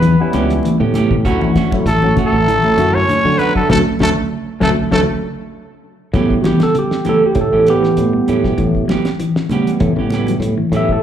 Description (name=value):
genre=afrobeat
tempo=98 BPM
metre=4/4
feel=swing 54% on 16ths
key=A mixolydian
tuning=A4 = 440 Hz
part: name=growling trumpet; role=melody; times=0.0-5.0 s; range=A4 to C#5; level=-17 LUFS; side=equal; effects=slapback echo
part: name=clear alto saxophone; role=second line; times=0.0-5.0 s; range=A3 to C#4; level=-26 LUFS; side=right 4 dB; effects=slapback echo
part: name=semi-hollow electric guitar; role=arpeggios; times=0.0-10.7 s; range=B2 to G3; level=-20 LUFS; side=left 5 dB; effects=slapback echo
part: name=fingered electric bass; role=bass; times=0.0-11.0 s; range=A1 to D3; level=-18 LUFS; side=right 1 dB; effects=none
part: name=cloth-damped thuddy drum kit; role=drums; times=0.0-11.0 s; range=hi-hat, kick drum, snare drum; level=-21 LUFS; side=equal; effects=none
part: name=congas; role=percussion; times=0.0-10.9 s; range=none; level=-22 LUFS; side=right 4 dB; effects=slapback echo
part: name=barky tine electric piano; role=accompaniment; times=0.2-11.0 s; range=C#3 to E5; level=-18 LUFS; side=right 1 dB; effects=overdrive, phaser, slapback echo
part: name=clean electric guitar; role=stabs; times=0.3-10.9 s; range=E3 to G4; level=-23 LUFS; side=right 9 dB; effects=slapback echo
room=light reverb, studio reverb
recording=live gig heard through the venue's PA, club reverb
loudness=-12 LUFS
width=side -9 dB against mid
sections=0.0-6.1 A section; 6.1-11.0 B section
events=band accent 3.7-6.1; drum fill 5.4-6.1; tine electric piano solo 6.1-11.0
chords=0.0 A9; 1.2 Dmaj7; 6.1 A9